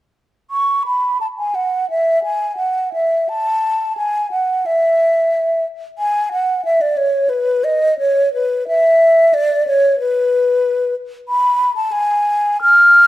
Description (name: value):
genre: classical, baroque-style fantasia for unaccompanied flute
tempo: 81-95 BPM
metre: 4/4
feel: rubato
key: unclear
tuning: A4 = 441 Hz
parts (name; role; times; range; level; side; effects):
- mellow hollow concert flute; solo; 0.5-13.1 s; B4 to E#6; -13 LUFS; equal; none
room: moderate recital hall reverb, RT60 1.4 s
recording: none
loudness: -14 LUFS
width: side -15 dB against mid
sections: 0.5-13.1 A section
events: none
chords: none